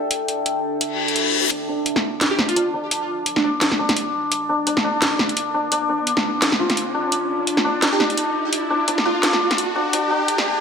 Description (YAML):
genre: half-time drum and bass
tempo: 171 BPM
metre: 4/4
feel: swing 57% on 16ths, half-time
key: D minor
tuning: A4 = 443 Hz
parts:
  - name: deep dark ambient pad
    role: sustained chords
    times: 0.0-10.6 s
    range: D4 to G5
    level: -29 LUFS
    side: equal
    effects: chorus, built-in reverb
  - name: drum and bass drum kit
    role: drums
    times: 0.1-10.4 s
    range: hi-hat, snare drum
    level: -20 LUFS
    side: equal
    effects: none
  - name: reverse cymbal and riser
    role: sound effects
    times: 0.9-10.6 s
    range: none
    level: -26 LUFS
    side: equal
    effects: none
  - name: santur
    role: arpeggios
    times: 1.5-10.6 s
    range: D4 to F4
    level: -22 LUFS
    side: left 2 dB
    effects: low-pass filter, digital delay
  - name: plucky unison lead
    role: melody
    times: 2.3-3.5, 7.9-9.6 s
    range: D4 to G4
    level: -25 LUFS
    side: right 3 dB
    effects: wide subtle chorus, digital delay
room: moderate echo chamber reverb, RT60 1.5 s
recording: high-pass filter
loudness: -18 LUFS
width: side -6 dB against mid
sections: 0.0-1.5 A section; 1.5-10.6 B section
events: reverse cymbal 0.9-1.5; build-up 1.5-10.6; riser 1.5-10.6; filter sweep on ambient pad 1.5-10.6; filter sweep on santur 1.5-10.6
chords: 0.0 D5; 1.5 Dm